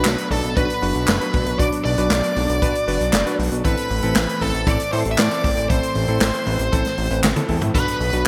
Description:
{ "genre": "synthwave", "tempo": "117 BPM", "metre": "4/4", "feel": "straight", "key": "B phrygian", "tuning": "A4 = 440 Hz", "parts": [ { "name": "bluesy overdriven lead guitar", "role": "melody", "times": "0.0-8.3 s", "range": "A4 to E5", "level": "-27 LUFS", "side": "equal", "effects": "distortion, digital delay" }, { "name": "airy dreamy lead", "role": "second line", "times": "0.0-8.3 s", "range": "A5 to E6", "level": "-33 LUFS", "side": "equal", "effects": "chorus, digital delay" }, { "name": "warm analog pad", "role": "sustained chords", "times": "0.0-8.3 s", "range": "D3 to D4", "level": "-31 LUFS", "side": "equal", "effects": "chorus" }, { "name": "warm electric grand piano", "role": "stabs", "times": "0.0-8.2 s", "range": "C4 to D5", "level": "-29 LUFS", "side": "equal", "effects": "none" }, { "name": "fat analog bass", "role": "bass", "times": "0.0-8.2 s", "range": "F#1 to A2", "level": "-25 LUFS", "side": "equal", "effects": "none" }, { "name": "swinging big-band drum kit", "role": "drums", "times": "0.0-8.2 s", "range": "crash cymbal, handclaps, hi-hat, snare drum, toms", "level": "-26 LUFS", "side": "equal", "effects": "gated reverb" }, { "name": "kick drum", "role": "drums", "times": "0.3-7.8 s", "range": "none", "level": "-26 LUFS", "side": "equal", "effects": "none" } ], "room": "moderate plate reverb, RT60 1.8 s", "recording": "bright 1980s-style digital production", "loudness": "-20 LUFS", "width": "mono", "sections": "0.0-8.3 A section", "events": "drum fill 7.2-7.7", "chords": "0.0 Bm; 3.6 Am; 7.7 Bm" }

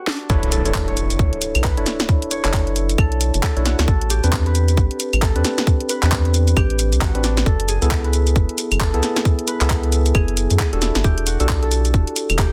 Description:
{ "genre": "UK garage, two-step garage", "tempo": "134 BPM", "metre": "4/4", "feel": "swing 60% on 16ths", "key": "B minor", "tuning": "A4 = 440 Hz", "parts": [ { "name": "Celtic harp", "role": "melody", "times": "0.0-12.5 s", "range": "D4 to C#5", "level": "-31 LUFS", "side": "equal", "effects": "digital delay" }, { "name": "garage drum kit", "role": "drums", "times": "0.1-12.5 s", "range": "claves, handclaps, hi-hat, shaker, snare drum", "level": "-25 LUFS", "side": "equal", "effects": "overdrive" }, { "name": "tine electric piano", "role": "stabs", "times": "0.3-12.5 s", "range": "B3 to C#5", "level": "-27 LUFS", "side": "equal", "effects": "overdrive, digital delay" }, { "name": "rubbery square bass", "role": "bass", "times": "0.3-12.5 s", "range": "E1 to F#2", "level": "-21 LUFS", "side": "equal", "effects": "none" }, { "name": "electronic kick drum", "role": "drums", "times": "0.3-12.5 s", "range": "none", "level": "-21 LUFS", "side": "equal", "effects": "overdrive" }, { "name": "impact", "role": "sound effects", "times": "0.3-2.1 s", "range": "none", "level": "-32 LUFS", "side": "equal", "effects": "none" } ], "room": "little or no reverb", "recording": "dense, heavily limited modern master", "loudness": "-18 LUFS", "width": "mono", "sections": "0.3-12.5 A section", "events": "break 0.0; drum fill 0.1; drop 0.3-12.5; impact 0.3-2.1", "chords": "0.3 Bm11; 3.9 Am11; 7.5 F#m11; 10.8 Em11" }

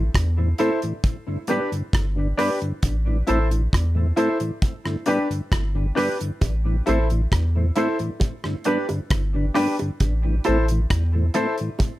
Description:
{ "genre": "roots reggae", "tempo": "67 BPM", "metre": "4/4", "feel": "straight", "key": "A minor", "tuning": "A4 = 440 Hz", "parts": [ { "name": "mellow tonewheel organ", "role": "accompaniment", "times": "0.0-11.7 s", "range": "G2 to E4", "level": "-27 LUFS", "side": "equal", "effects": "chorus vibrato, stopped rotary speaker, tape echo" }, { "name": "soft dub sub bass", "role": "bass", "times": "0.0-11.3 s", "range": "G1 to E2", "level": "-21 LUFS", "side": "equal", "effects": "none" }, { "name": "damped 70s drum kit", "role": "drums", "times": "0.1-12.0 s", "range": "hi-hat, kick drum, rim click", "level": "-23 LUFS", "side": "equal", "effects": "none" }, { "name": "semi-hollow electric guitar", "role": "accompaniment", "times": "0.6-11.6 s", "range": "D4 to C5", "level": "-27 LUFS", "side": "right 4 dB", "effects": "lush chorus, tape echo, plate reverb" }, { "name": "bright upright piano", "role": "stabs", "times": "0.6-11.5 s", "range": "D4 to C5", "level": "-26 LUFS", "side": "left 4 dB", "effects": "plate reverb" }, { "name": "bongos", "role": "percussion", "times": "6.4-12.0 s", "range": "none", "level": "-32 LUFS", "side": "right 3 dB", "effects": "none" } ], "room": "light reverb", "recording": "none", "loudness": "-20 LUFS", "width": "side -16 dB against mid", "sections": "0.0-12.0 A section", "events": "none", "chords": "0.0 Am; 1.0 G; 2.8 Am; 4.6 G; 6.4 Am; 8.2 G; 10.0 Am" }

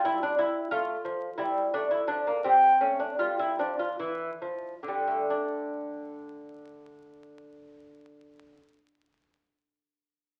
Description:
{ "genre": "classical, baroque-style dance for lute", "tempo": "44-62 BPM (dotted quarters)", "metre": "12/8", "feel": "rubato", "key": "D minor", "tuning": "A4 = 441 Hz", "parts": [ { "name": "lute", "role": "solo", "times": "0.0-9.0 s", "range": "D3 to F4", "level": "-28 LUFS", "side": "equal", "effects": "none" } ], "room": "moderate large studio reverb, RT60 0.8 s", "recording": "very old 78 rpm record, vinyl crackle", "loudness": "-28 LUFS", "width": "mono", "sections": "0.0-5.3 A section; 5.3-10.4 B section", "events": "slowing down 0.0-5.3", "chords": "0.0 Em; 0.7 Fmaj13; 2.8 A5; 5.3 D5" }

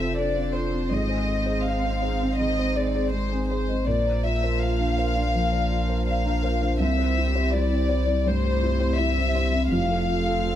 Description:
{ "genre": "neoclassical piano and strings", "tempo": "82 BPM", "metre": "4/4", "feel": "rubato", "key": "unclear", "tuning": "A4 = 438 Hz", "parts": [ { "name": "warm chamber violin section", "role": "melody", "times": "0.0-10.6 s", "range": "C5 to F5", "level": "-27 LUFS", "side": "left 3 dB", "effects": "none" }, { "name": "dark cello", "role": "second line", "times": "0.0-10.6 s", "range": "G3 to D4", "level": "-31 LUFS", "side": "right 7 dB", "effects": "none" }, { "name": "felt-muted upright piano", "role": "accompaniment", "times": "0.0-10.6 s", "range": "C2 to C5", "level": "-29 LUFS", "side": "left 1 dB", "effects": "none" }, { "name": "hollow soft pad", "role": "sustained chords", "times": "0.0-10.6 s", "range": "C4 to C5", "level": "-36 LUFS", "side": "right 2 dB", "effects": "chorus" }, { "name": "marimba with medium mallets", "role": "arpeggios", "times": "0.0-10.4 s", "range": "C4 to Bb5", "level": "-34 LUFS", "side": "right 3 dB", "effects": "slapback echo" }, { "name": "pure sine sub bass", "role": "bass", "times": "0.0-10.6 s", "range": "F1 to C2", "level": "-26 LUFS", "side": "equal", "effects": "none" } ], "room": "moderate recital hall reverb, RT60 1.7 s", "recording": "none", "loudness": "-21 LUFS", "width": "side -11 dB against mid", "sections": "0.0-10.6 A section", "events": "none", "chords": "0.0 F; 0.9 Ab; 3.9 Bbadd9; 6.8 C; 9.7 F" }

